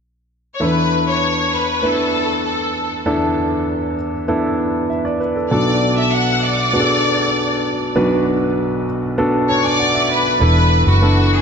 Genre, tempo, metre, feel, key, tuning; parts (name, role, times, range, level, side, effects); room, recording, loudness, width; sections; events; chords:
pop; 98 BPM; 4/4; straight; A4 = 440 Hz
warm studio violin section; melody; 0.5-11.4 s; F#4 to F#5; -18 LUFS; left 2 dB
warm upright piano; accompaniment; 0.6-11.4 s; B1 to A5; -17 LUFS; equal
vintage muted fingered electric bass; bass; 10.4-11.4 s; E1 to F#1; -13 LUFS; equal
wet lush hall reverb, RT60 2.8 s; dreamy mix soaked in reverb, nothing above 7.9 kHz; -15 LUFS; side -6 dB against mid
0.6-10.4 A section; 10.4-11.4 B section
upright piano fill 9.2-10.4
0.0 N.C.; 0.6 E7sus4; 5.5 Bm7; 10.4 E7sus4